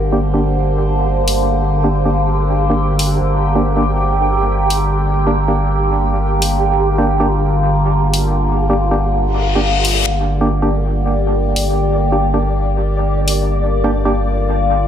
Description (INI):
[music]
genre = deep dubstep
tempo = 140 BPM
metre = 4/4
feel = swing 61% on 16ths, half-time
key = G minor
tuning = A4 = 440 Hz
[part]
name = overtone-sweeping drone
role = sustained chords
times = 0.0-14.9 s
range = D3 to C5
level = -18 LUFS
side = equal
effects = chorus, built-in reverb, phaser, vintage 12-bit sampler grit
[part]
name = saturated sub bass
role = bass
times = 0.0-14.9 s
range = G1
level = -18 LUFS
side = equal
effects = none
[part]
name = flickering grainy texture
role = texture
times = 0.0-14.9 s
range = G4 to D5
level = -26 LUFS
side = right 1 dB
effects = built-in reverb, lush chorus
[part]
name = percussive organ stab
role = stabs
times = 0.1-14.1 s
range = Bb3 to G4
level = -21 LUFS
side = right 1 dB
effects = chorus, dub echo
[part]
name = electronic hi-hat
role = drums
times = 1.3-13.4 s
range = none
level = -20 LUFS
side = left 2 dB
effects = none
[part]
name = reverse cymbal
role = sound effects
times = 9.3-10.1 s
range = none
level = -19 LUFS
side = left 6 dB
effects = none
[sound]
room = moderate plate reverb, RT60 1.1 s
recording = dreamy mix soaked in reverb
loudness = -13 LUFS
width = side -9 dB against mid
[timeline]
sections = 0.0-14.9 A section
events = filter sweep on synth stab 0.0-14.9; reverse cymbal 9.3-10.1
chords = 0.0 Gm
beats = 0.21 0.64 1.06 | 1.49 1.92 2.35 2.78 | 3.21 3.63 4.06 4.49 | 4.92 5.35 5.78 6.21 | 6.63 7.06 7.49 7.92 | 8.35 8.78 9.21 9.63 | 10.06 10.49 10.92 11.35 | 11.78 12.21 12.63 13.06 | 13.49 13.92 14.35 14.78